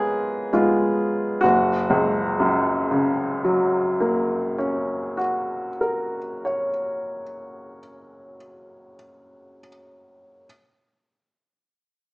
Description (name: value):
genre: classical, romantic nocturne for solo piano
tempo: 35 BPM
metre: 4/4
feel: rubato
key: F# major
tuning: A4 = 440 Hz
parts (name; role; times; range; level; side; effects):
- warm upright piano; solo; 0.0-10.5 s; F#1 to C#5; -20 LUFS; equal; none
room: wet recital hall reverb, RT60 1.3 s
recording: small speaker sound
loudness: -20 LUFS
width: side -26 dB against mid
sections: 0.0-1.4 A section; 1.4-8.2 B section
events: slowing down 0.0-1.4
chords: 0.0 C#7; 1.4 F#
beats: | 1.42 3.08 4.77 6.49